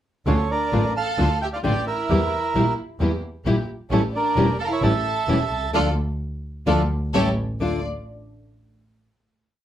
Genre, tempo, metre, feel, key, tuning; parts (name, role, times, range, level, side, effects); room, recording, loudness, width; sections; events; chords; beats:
tango; 131 BPM; 4/4; rubato; D harmonic minor; A4 = 441 Hz
bandoneon; melody; 0.3-7.8 s; A4 to D6; -24 LUFS; right 4 dB
rich studio violin section; second line; 0.3-7.8 s; C#4 to D5; -28 LUFS; equal
nylon-string guitar; accompaniment; 0.3-7.8 s; D3 to F4; -24 LUFS; left 3 dB
warm chamber string section; stabs; 0.3-7.8 s; A3 to G4; -31 LUFS; right 2 dB
clear double bass; bass; 0.3-7.8 s; E1 to E2; -24 LUFS; equal
moderate studio reverb, RT60 0.5 s; -20 LUFS; side -11 dB against mid
0.3-7.6 A section; 7.6-9.4 final chord
band accent 5.7-7.6
0.3 Dm; 2.1 Edim; 3.9 A7; 5.7 Dm; 7.1 A7; 7.6 Dm
| 0.27 0.73 1.18 1.64 | 2.10 2.55 3.00 3.46 | 3.91 4.37 4.82 5.28 | 5.74 6.20 6.66 7.13 | 7.60